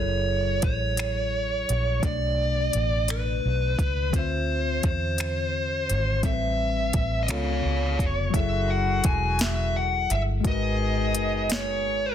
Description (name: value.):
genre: slow six-eight R&B.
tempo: 57 BPM (dotted quarters).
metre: 6/8.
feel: straight.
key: F# minor, F# dorian from 8.3 s.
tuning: A4 = 444 Hz.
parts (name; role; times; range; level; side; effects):
dark smooth lead guitar; melody; 0.0-12.1 s; B4 to G#5; -27 LUFS; right 1 dB; overdrive.
mellow tine electric piano; accompaniment; 0.0-12.1 s; A2 to E5; -32 LUFS; moving between left 11 dB and left 5 dB; auto-pan.
vintage muted fingered electric bass; bass; 0.0-12.1 s; E1 to E2; -27 LUFS; equal; none.
smooth R&B drum kit; drums; 0.6-11.7 s; finger snaps, hi-hat, kick drum, snare drum; -27 LUFS; equal; overdrive.
warm horn section; stabs; 8.3-12.1 s; C#3 to G#4; -34 LUFS; left 1 dB; none.
room: digital ambience.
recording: dense, heavily limited modern master.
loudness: -23 LUFS.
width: side -10 dB against mid.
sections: 0.0-8.3 A section; 8.3-12.1 B section.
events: none.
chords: 0.0 F#m9; 2.0 Bm9; 4.1 Dm9; 6.2 Am9; 7.3 C#7b13; 8.3 F#m9; 10.4 G#m9.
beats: 0.97 | 2.03 3.08 | 4.13 5.18 | 6.24 7.29 | 8.34 9.40 | 10.45 11.50.